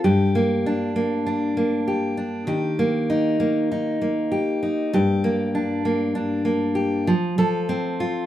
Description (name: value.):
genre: pop.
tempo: 98 BPM.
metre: 4/4.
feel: straight.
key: G minor.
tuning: A4 = 440 Hz.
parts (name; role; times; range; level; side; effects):
fingerpicked steel-string acoustic guitar; solo; 0.0-8.3 s; G2 to A4; -20 LUFS; equal; none.
room: light reverb.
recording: band playing live in one room.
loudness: -20 LUFS.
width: side -12 dB against mid.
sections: 0.0-8.3 A section.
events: none.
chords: 0.0 Gm; 2.5 Eb; 4.9 Gm; 7.1 F.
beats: | 0.04 0.65 1.26 1.88 | 2.49 3.10 3.71 4.32 | 4.93 5.54 6.15 6.76 | 7.37 7.98.